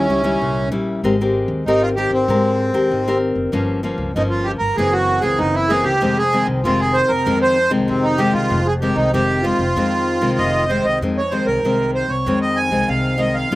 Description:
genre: samba and choro.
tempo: 96 BPM.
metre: 4/4.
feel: straight.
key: F minor.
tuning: A4 = 439 Hz.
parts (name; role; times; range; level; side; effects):
accordion; melody; 0.0-13.6 s; C4 to Ab5; -18 LUFS; right 1 dB; none.
nylon-string guitar; accompaniment; 0.0-13.6 s; F2 to Bb4; -20 LUFS; left 2 dB; none.
upright bass; bass; 0.0-13.6 s; F1 to Ab2; -24 LUFS; equal; none.
room: little or no reverb.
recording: recorded outdoors, with no room sound.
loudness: -15 LUFS.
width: side -17 dB against mid.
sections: 0.0-11.0 A section; 11.0-13.6 B section.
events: none.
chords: 0.0 Eb7b9; 1.0 Abmaj9; 3.5 Gm7b5; 4.8 Gb7#11; 6.0 Fm7.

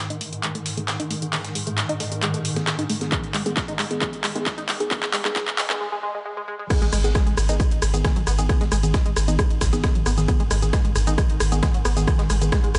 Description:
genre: driving peak-time techno.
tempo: 134 BPM.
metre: 4/4.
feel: straight.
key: G# minor.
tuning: A4 = 440 Hz.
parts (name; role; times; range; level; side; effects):
swarming drone; drone; 0.0-12.8 s; G#2 to D#3; -34 LUFS; equal; built-in reverb, sidechain pumping.
tight sequenced synth; riff; 0.1-12.7 s; F#3 to D#4; -34 LUFS; equal; chorus, phaser, tube saturation, sidechain pumping, tape echo.
techno drum kit; drums; 0.1-12.8 s; crash cymbal, handclaps, hi-hat, ride cymbal, rim click, shaker; -29 LUFS; equal; none.
dusty soul sampler-style drum kit; drums; 0.2-12.8 s; hi-hat, snare drum; -40 LUFS; equal; none.
filtered dub chord stab; stabs; 0.3-12.5 s; D#3 to G#4; -32 LUFS; equal; phaser, sidechain pumping, dub echo.
electronic kick drum; drums; 3.1-12.6 s; none; -25 LUFS; equal; none.
swell and impact; sound effects; 6.0-8.5 s; none; -40 LUFS; equal; none.
saturated sub bass; bass; 6.8-12.8 s; G#1; -26 LUFS; equal; overdrive, sidechain pumping, low-pass filter.
room: light reverb.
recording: high-pass filter, nothing above 10.5 kHz.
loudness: -22 LUFS.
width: mono.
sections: 0.0-6.7 A section; 6.7-12.8 B section.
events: build-up 0.0-6.7; drum fill 0.0-5.8; filter sweep on synth arpeggio sound 0.0-6.7; filter sweep on synth stab 0.0-6.7; break 5.8-6.7; drop 6.7-12.8; impact 6.7-8.5.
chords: 0.0 G#m.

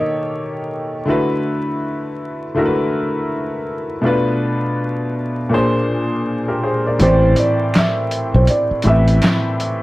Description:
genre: lo-fi hip hop.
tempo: 81 BPM.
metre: 4/4.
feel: swing 60% on 16ths.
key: A dorian.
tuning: A4 = 440 Hz.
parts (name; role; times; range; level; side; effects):
felt-muted upright piano; melody; 0.0-1.0, 7.0-9.8 s; C5 to E5; -20 LUFS; right 2 dB; low-pass filter.
warm upright piano; accompaniment; 0.0-9.8 s; A2 to E5; -18 LUFS; left 1 dB; low-pass filter.
fretless electric bass; bass; 7.0-9.2 s; A1 to B1; -13 LUFS; equal; none.
lo-fi sampler-style drum kit; drums; 7.0-9.8 s; handclaps, hi-hat, snare drum; -18 LUFS; equal; none.
finger snaps; percussion; 7.7-9.4 s; none; -30 LUFS; right 4 dB; none.
room: moderate studio reverb, RT60 0.7 s.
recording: vinyl crackle.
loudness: -15 LUFS.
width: side -18 dB against mid.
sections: 0.0-7.0 A section; 7.0-9.8 B section.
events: kick muted 7.0-9.8.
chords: 0.0 D#7#11; 1.1 D69; 4.0 Bm7b5; 5.5 Bb9; 7.0 Am11.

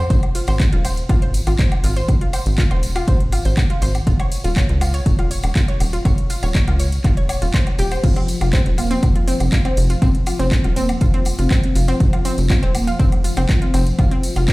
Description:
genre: melodic techno.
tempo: 121 BPM.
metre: 4/4.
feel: straight.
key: F minor.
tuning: A4 = 440 Hz.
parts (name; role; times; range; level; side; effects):
analog pluck; arpeggios; 0.0-14.5 s; C4 to Db6; -26 LUFS; equal; chorus, sidechain pumping, tape echo.
tight sequencer bass; bass; 0.0-14.5 s; Eb1 to Db2; -19 LUFS; equal; sidechain pumping.
electronic kick drum; drums; 0.1-14.5 s; none; -17 LUFS; equal; overdrive.
house drum kit; drums; 0.1-14.5 s; crash cymbal, handclaps, hi-hat, ride cymbal, woodblock; -28 LUFS; equal; overdrive.
tambourine; percussion; 0.1-14.5 s; none; -35 LUFS; left 2 dB; none.
mellow synth brass; melody; 8.0-14.5 s; F3 to F4; -25 LUFS; equal; chorus, sidechain pumping, dub echo.
room: little or no reverb.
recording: played on a big sound system in a bare room, large studio reverb.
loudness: -15 LUFS.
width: side -21 dB against mid.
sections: 0.0-14.5 A section.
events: none.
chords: 0.0 Fm; 4.1 N.C.; 8.0 F5.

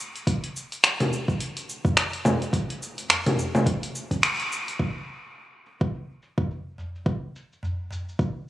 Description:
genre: downtempo.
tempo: 106 BPM.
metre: 4/4.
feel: swing 58% on 16ths.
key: none.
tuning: none.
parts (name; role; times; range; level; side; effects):
deep house drum kit; drums; 0.0-8.3 s; cabasa, congas, finger snaps, hi-hat; -23 LUFS; equal; overdrive, low-pass filter on perc, low-pass filter on hats, low-pass filter on snare, low-pass filter on room.
electronic kick drum; drums; 0.3-8.3 s; none; -26 LUFS; equal; overdrive.
udu; percussion; 1.9-8.0 s; none; -34 LUFS; equal; none.
room: moderate lush hall reverb, RT60 3.0 s.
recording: recorded on a phone in the room, club reverb, compression.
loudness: -23 LUFS.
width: side -15 dB against mid.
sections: 0.0-4.8 A section; 4.8-8.5 B section.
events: band accent 4.2.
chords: none.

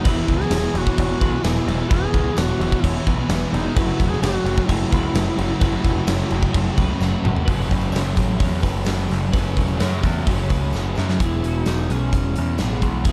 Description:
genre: rock, shoegaze and dream pop.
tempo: 129 BPM.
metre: 4/4.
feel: straight.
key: unclear.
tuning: A4 = 440 Hz.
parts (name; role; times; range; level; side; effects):
mellow duduk; melody; 0.0-7.0, 11.2-13.1 s; B3 to G#4; -29 LUFS; equal; digital delay.
twelve-string electric guitar; arpeggios; 0.0-13.1 s; F#4 to C#5; -37 LUFS; equal; ensemble chorus, digital delay.
raw garage guitar; riff; 0.0-13.1 s; F#2 to G#4; -31 LUFS; equal; overdrive, reverse reverb.
sludgy distorted guitar; riff; 0.0-11.2 s; E2 to F#3; -32 LUFS; equal; none.
thick fuzz guitar; riff; 0.0-13.1 s; E2 to F#3; -29 LUFS; equal; distortion, subtle chorus.
big rock drum kit; drums; 0.0-13.1 s; crash cymbal, hi-hat, kick drum, snare drum, toms; -24 LUFS; equal; none.
growling picked electric bass; bass; 0.1-13.1 s; E1 to F#2; -26 LUFS; equal; overdrive.
tambourine; percussion; 0.5-12.7 s; none; -47 LUFS; equal; none.
room: studio ambience.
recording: dark, warm production.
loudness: -20 LUFS.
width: mono.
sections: 0.0-7.5 A section; 7.5-11.2 B section; 11.2-13.1 C section.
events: drum fill 7.0-7.5, 10.7-11.2.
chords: 0.1 E; 3.8 F#m7; 11.2 E.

